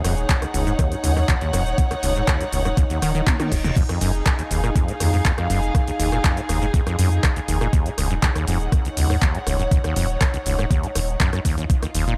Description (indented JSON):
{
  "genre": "acid house",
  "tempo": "121 BPM",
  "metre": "4/4",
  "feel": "straight",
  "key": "unclear",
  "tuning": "A4 = 440 Hz",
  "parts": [
    { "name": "acid bass, saw", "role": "riff", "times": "0.0-12.1 s", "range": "Db2 to Eb3", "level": "-27 LUFS", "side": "equal", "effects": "overdrive, analog chorus, sidechain pumping, dub echo" },
    { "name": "saturated sub bass", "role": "bass", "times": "0.0-12.2 s", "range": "Eb1 to F2", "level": "-26 LUFS", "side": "equal", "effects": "tube saturation, sidechain pumping" },
    { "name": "punchy analog drum machine", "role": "drums", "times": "0.0-12.2 s", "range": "crash cymbal, handclaps, hi-hat, rim click, shaker, toms", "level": "-29 LUFS", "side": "equal", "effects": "overdrive" },
    { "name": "warm studio string section", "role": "texture", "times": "0.0-12.2 s", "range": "Eb4 to Gb5", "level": "-30 LUFS", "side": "equal", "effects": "sidechain pumping" },
    { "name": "electronic kick drum", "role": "drums", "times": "0.3-11.8 s", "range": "none", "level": "-22 LUFS", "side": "equal", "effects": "none" },
    { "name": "reverse cymbal", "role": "sound effects", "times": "3.4-3.8 s", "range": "none", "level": "-38 LUFS", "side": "equal", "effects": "none" }
  ],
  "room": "light reverb",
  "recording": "echo-heavy mix",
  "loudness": "-21 LUFS",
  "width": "mono",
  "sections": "0.0-12.2 A section",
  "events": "drum fill 3.3-3.8; reverse cymbal 3.4-3.8",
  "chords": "0.0 Ebm7; 3.8 Fm7; 7.7 Ebm7",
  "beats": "0.29 0.79 1.28 | 1.78 2.28 2.77 3.27 | 3.76 4.26 4.76 5.25 | 5.75 6.24 6.74 7.24 | 7.73 8.23 8.72 9.22 | 9.71 10.21 10.71 11.20 | 11.70"
}